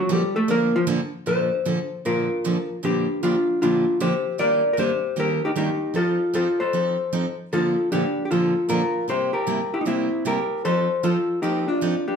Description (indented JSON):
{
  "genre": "country",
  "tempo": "154 BPM",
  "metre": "4/4",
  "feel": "swing 64% on 8ths",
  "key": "Bb major",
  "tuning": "A4 = 440 Hz",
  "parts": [
    { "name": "vintage hollow-body jazz guitar", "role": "melody", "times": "0.0-12.2 s", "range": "F3 to D5", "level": "-21 LUFS", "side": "left 2 dB", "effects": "none" },
    { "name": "picked steel-string acoustic guitar", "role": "accompaniment", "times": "0.1-11.9 s", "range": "Bb2 to A4", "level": "-26 LUFS", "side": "right 4 dB", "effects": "none" }
  ],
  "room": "wet studio reverb, RT60 0.8 s",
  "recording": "band playing live in one room",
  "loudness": "-20 LUFS",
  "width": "side -6 dB against mid",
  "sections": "0.0-1.3 A section; 1.3-12.2 B section",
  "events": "hollow-body jazz guitar solo 0.0-1.3",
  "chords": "0.0 Bbmaj7; 2.8 Gm7/Bb; 4.4 Ebmaj7; 6.0 F7; 7.5 Bbmaj7; 9.1 C7; 10.7 F7"
}